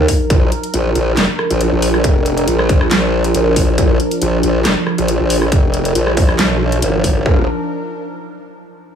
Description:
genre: heavy wobble dubstep.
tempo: 138 BPM.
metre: 4/4.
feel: swing 53% on 16ths, half-time.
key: unclear.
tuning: A4 = 435 Hz.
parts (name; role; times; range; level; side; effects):
evolving wavetable pad; sustained chords; 0.0-7.5 s; F3 to Bb4; -19 LUFS; right 1 dB; phaser, built-in reverb, sidechain pumping.
formant-sweep wobble bass; bass; 0.0-7.5 s; Eb1 to Cb2; -15 LUFS; equal; chorus, overdrive.
dubstep drum kit; drums; 0.1-7.1 s; handclaps, hi-hat, rim click, snare drum; -19 LUFS; equal; none.
electronic kick drum; drums; 0.1-7.4 s; none; -14 LUFS; equal; distortion.
room: little or no reverb.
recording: studio ambience.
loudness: -12 LUFS.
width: side -8 dB against mid.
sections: 0.0-7.3 A section; 7.3-9.0 B section.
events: drop 0.0-7.3.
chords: 0.3 Bb; 7.3 Ebm.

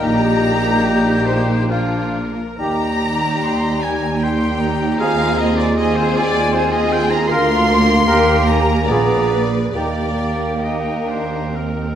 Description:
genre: classical, slow romantic movement for symphony orchestra.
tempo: 59-80 BPM.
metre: 3/4.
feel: rubato.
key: Eb major.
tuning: A4 = 438 Hz.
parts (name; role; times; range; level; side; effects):
rich symphonic violin section; melody; 0.0-12.0 s; F4 to Cb5; -26 LUFS; left 2 dB; none.
bright concert flute; second line; 0.0-12.0 s; F5 to G6; -26 LUFS; left 1 dB; none.
clear oboe; second line; 0.0-12.0 s; Bb4 to C6; -26 LUFS; equal; none.
mellow clarinet; second line; 0.0-12.0 s; D4 to Ab4; -28 LUFS; equal; none.
warm symphonic violin section; second line; 0.0-12.0 s; Bb4 to C6; -24 LUFS; left 3 dB; none.
mellow bassoon; accompaniment; 0.0-12.0 s; F3 to Cb4; -25 LUFS; right 1 dB; none.
rich symphonic viola section; accompaniment; 0.0-12.0 s; Bb3 to Ab4; -26 LUFS; right 1 dB; none.
mellow French horn section; sustained chords; 0.0-10.1 s; Bb3 to G4; -26 LUFS; left 3 dB; none.
mellow trumpet; stabs; 0.0-10.1 s; F4 to Bb4; -24 LUFS; right 2 dB; none.
dark symphonic double bass section; bass; 0.0-12.0 s; Bb1 to Eb2; -25 LUFS; right 2 dB; none.
dark tuba; bass; 0.0-12.0 s; Bb1 to Eb2; -24 LUFS; right 3 dB; none.
rich symphonic cello section; bass; 0.0-12.0 s; D2 to Bb2; -22 LUFS; right 2 dB; none.
room: wet recital hall reverb, RT60 1.4 s.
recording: none.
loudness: -15 LUFS.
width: side -9 dB against mid.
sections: 0.0-12.0 A section.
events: none.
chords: 0.0 Eb/Bb; 1.7 Bb; 2.6 Eb; 5.0 Fm7/Eb; 7.3 Bb/D; 8.1 Eb; 8.9 Bb7b9; 9.8 Eb.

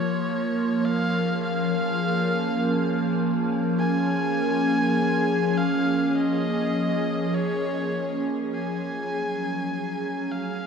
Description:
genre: ambient.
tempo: free time.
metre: none.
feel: none.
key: unclear.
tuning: A4 = 440 Hz.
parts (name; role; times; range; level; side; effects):
bright electric violin; melody; 0.0-10.7 s; Db5 to Ab5; -29 LUFS; equal; shimmer reverb, diffuse ambient delay.
evolving wavetable pad; sustained chords; 0.0-10.7 s; F3 to Ab4; -23 LUFS; equal; chorus, built-in reverb, phaser, shimmer reverb.
room: wet huge ambient reverb, RT60 8.0 s.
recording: dreamy mix soaked in reverb.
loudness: -22 LUFS.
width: side -6 dB against mid.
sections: 0.0-10.7 A section.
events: fade-out 5.4-10.7.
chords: 0.0 Bbm7; 8.5 Gbmadd9.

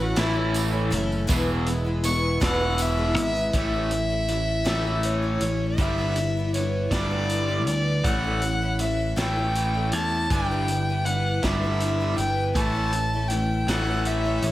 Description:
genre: folk rock and heartland rock.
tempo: 53 BPM (dotted quarters).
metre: 6/8.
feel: straight.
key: A mixolydian.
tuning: A4 = 440 Hz.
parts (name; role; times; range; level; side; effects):
dark fiddle; melody; 0.0-14.5 s; E4 to C#6; -28 LUFS; left 1 dB; slapback echo.
picked twelve-string acoustic guitar; accompaniment; 0.0-14.5 s; E2 to E4; -30 LUFS; left 2 dB; none.
accordion; sustained chords; 0.0-3.5 s; G#3 to A4; -39 LUFS; right 2 dB; none.
raw garage guitar; riff; 0.0-14.5 s; E2 to A3; -30 LUFS; right 1 dB; overdrive.
modern bright picked electric bass; bass; 0.0-14.5 s; E1 to E2; -26 LUFS; equal; none.
tambourine; percussion; 0.0-3.5 s; none; -39 LUFS; right 4 dB; none.
vintage drum kit; drums; 0.2-14.5 s; hi-hat, kick drum, snare drum; -29 LUFS; equal; none.
room: light reverb, studio reverb.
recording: none.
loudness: -22 LUFS.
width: side -15 dB against mid.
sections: 0.0-3.5 A section; 3.5-14.5 B section.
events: fiddle solo 0.0-3.5.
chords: 0.0 A; 1.3 E; 3.5 A; 5.8 G6; 8.0 A; 10.3 G6; 12.6 A.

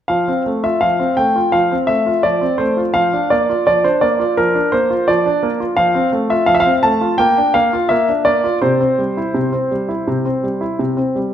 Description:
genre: classical-period piano sonatina.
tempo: 84 BPM.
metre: 4/4.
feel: straight.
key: F major.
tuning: A4 = 440 Hz.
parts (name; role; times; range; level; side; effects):
clear concert grand piano; solo; 0.1-11.3 s; C3 to A5; -13 LUFS; equal; none.
room: wet recital hall reverb, RT60 1.5 s.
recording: none.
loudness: -13 LUFS.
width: side -10 dB against mid.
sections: 0.1-11.3 A section.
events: none.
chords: 0.1 F; 3.0 Bb/F; 5.8 F; 7.2 Bb; 8.6 C.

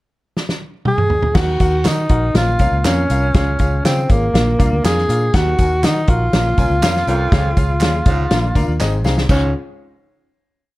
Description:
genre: uptempo 1960s-style soul.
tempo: 121 BPM.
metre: 4/4.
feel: straight.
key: Db major.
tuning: A4 = 441 Hz.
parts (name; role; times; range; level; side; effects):
natural country drum kit; drums; 0.4-9.4 s; crash cymbal, hi-hat, kick drum, snare drum, toms; -17 LUFS; equal; none.
breathy tenor saxophone; melody; 0.9-9.5 s; Bb3 to Ab4; -19 LUFS; equal; none.
clear baby grand piano; accompaniment; 1.3-9.5 s; Db2 to Ab5; -23 LUFS; left 3 dB; none.
vintage muted fingered electric bass; bass; 1.4-9.5 s; Ab1 to Eb3; -18 LUFS; equal; none.
tambourine and handclaps; percussion; 1.6-9.5 s; none; -32 LUFS; right 6 dB; none.
warm baritone saxophone; riff; 5.3-9.5 s; Eb2 to Ab2; -28 LUFS; right 5 dB; none.
room: light reverb, studio reverb.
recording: dark, warm production.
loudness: -14 LUFS.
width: side -18 dB against mid.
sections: 0.0-1.4 pickup bar; 1.4-9.3 verse; 9.3-10.8 final chord.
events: drum fill 0.4-1.4, 8.8-9.3.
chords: 0.0 N.C.; 1.4 Ebm; 2.4 Bbm; 3.3 Db; 4.3 Bb; 5.3 Ebm; 6.3 Bbm; 7.3 Db; 8.3 Bb; 8.8 Ab; 9.3 Db.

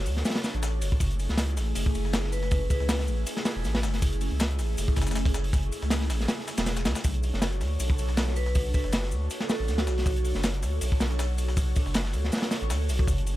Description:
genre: drum and bass, jungle.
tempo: 159 BPM.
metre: 4/4.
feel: swing 54% on 16ths.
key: B minor.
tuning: A4 = 440 Hz.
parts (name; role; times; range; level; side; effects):
airy breathy pad; sustained chords; 0.0-13.4 s; A3 to C#5; -36 LUFS; equal; chorus, phaser.
saturated sub bass; bass; 0.0-13.4 s; E1 to D2; -28 LUFS; equal; tube saturation.
crunchy breakbeat drum kit; drums; 0.1-13.4 s; hi-hat, kick drum, snare drum; -28 LUFS; equal; none.
electronic shaker and snare drum; drums; 0.1-13.4 s; none; -38 LUFS; left 3 dB; high-pass filter on snare, high-pass filter on perc.
vibraphone with hard mallets; melody; 2.3-3.0, 8.4-10.3 s; F#4 to B4; -36 LUFS; right 1 dB; dub echo.
room: small room ambience.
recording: none.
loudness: -24 LUFS.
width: side -15 dB against mid.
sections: 0.0-13.4 A section.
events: none.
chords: 0.0 Bm7 (rootless); 1.0 F#m7; 7.0 Bm7.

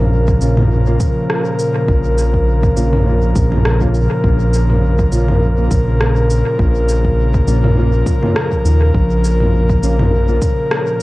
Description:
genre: ambient dub.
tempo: 102 BPM.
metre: 4/4.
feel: swing 55% on 16ths.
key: Bb minor.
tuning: A4 = 439 Hz.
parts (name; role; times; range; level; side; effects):
airy breathy pad; sustained chords; 0.0-11.0 s; Bb2 to Bb4; -17 LUFS; equal; chorus, vintage 12-bit sampler grit, cassette tape.
round analog bass; bass; 0.0-10.4 s; Bb1 to Eb2; -14 LUFS; equal; none.
electronic kick drum; drums; 0.3-10.5 s; none; -18 LUFS; equal; cassette tape.
mellow electric guitar; stabs; 0.4-10.4 s; Bb3 to F4; -26 LUFS; right 1 dB; ensemble chorus, cassette tape, dub echo.
organic electronic drum kit; drums; 0.4-11.0 s; cabasa, rim click, toms; -20 LUFS; equal; overdrive, cassette tape, dub echo.
room: little or no reverb.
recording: home recording on cassette.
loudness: -12 LUFS.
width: side -19 dB against mid.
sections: 0.0-11.0 A section.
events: none.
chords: 0.0 Bbm.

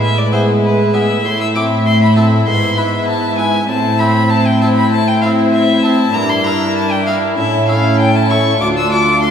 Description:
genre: classical, baroque-style concerto movement with solo episodes.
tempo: 98 BPM.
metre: 4/4.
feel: straight.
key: A minor.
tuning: A4 = 438 Hz.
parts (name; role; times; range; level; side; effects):
clear violin; melody; 0.0-9.3 s; B4 to E6; -18 LUFS; left 2 dB; none.
rich chamber violin section; melody; 0.0-9.3 s; A4 to E5; -24 LUFS; left 6 dB; none.
rich symphonic violin section; second line; 0.0-9.3 s; E4 to F4; -19 LUFS; left 1 dB; none.
harpsichord; accompaniment; 0.0-9.3 s; D2 to C5; -21 LUFS; equal; none.
rich studio viola section; accompaniment; 0.0-9.3 s; G#3 to D4; -19 LUFS; right 1 dB; none.
clear studio cello section; bass; 0.0-9.3 s; D2 to A2; -16 LUFS; right 1 dB; none.
room: wet recital hall reverb, RT60 1.6 s.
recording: heard from further back in the room.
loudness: -11 LUFS.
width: side -8 dB against mid.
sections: 0.0-9.3 A section.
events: none.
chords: 0.0 E/A; 1.2 Am; 2.5 E/G#; 3.7 Am; 6.2 Em7b5/G; 7.4 A; 8.6 Dm.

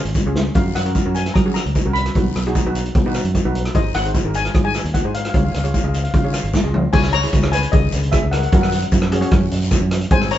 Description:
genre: calypso.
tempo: 151 BPM.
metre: 4/4.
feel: straight.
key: F# major.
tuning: A4 = 440 Hz.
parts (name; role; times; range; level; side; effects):
steel pan; accompaniment; 0.0-10.3 s; B#3 to D#5; -26 LUFS; equal; none.
fingered electric bass; bass; 0.1-10.4 s; G#1 to F#3; -20 LUFS; equal; none.
street-band drum kit; drums; 0.1-10.4 s; crash cymbal, hi-hat, kick drum, rim click, snare drum, toms; -18 LUFS; equal; none.
guiro; percussion; 0.1-10.4 s; none; -35 LUFS; left 4 dB; none.
steel pan; melody; 0.6-10.4 s; G#4 to B5; -24 LUFS; left 4 dB; ping-pong delay.
room: moderate studio reverb, RT60 0.5 s.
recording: band playing live in one room, nothing above 7.9 kHz.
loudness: -15 LUFS.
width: side -12 dB against mid.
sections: 0.0-6.9 A section; 6.9-10.4 B section.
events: drum fill 0.4, 6.5-6.9.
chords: 0.0 C#; 0.6 F#; 2.2 B; 3.7 G#7; 5.3 C#; 6.9 C#madd9; 8.5 F#.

